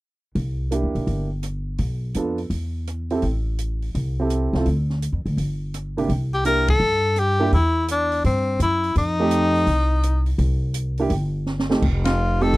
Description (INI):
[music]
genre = jazz, small-group swing and bop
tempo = 168 BPM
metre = 4/4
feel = swing 66% on 8ths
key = C mixolydian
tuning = A4 = 439 Hz
[part]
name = upright bass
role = bass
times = 0.4-12.6 s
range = F1 to G2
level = -22 LUFS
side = equal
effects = none
[part]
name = open jazz drum kit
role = drums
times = 0.4-12.6 s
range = crash cymbal, hi-hat, kick drum, ride cymbal, rim click, snare drum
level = -27 LUFS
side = equal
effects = none
[part]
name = warm baby grand piano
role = accompaniment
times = 0.7-12.5 s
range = C3 to A4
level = -23 LUFS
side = right 3 dB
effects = none
[part]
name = bright tenor saxophone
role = melody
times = 6.3-12.6 s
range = C4 to Bb4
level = -21 LUFS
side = left 2 dB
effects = none
[sound]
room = little or no reverb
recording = dry, close 1970s-style studio recording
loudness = -20 LUFS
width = side -19 dB against mid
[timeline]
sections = 0.4-6.1 A section; 6.1-12.6 B section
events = band accent 6.6, 12.0; drum fill 11.5-11.8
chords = 0.4 C7; 1.8 Bm7b5; 2.5 Emadd11; 3.2 Am7; 4.7 Dm; 5.4 G5; 6.1 C; 9.0 F7; 10.4 C5; 11.8 F7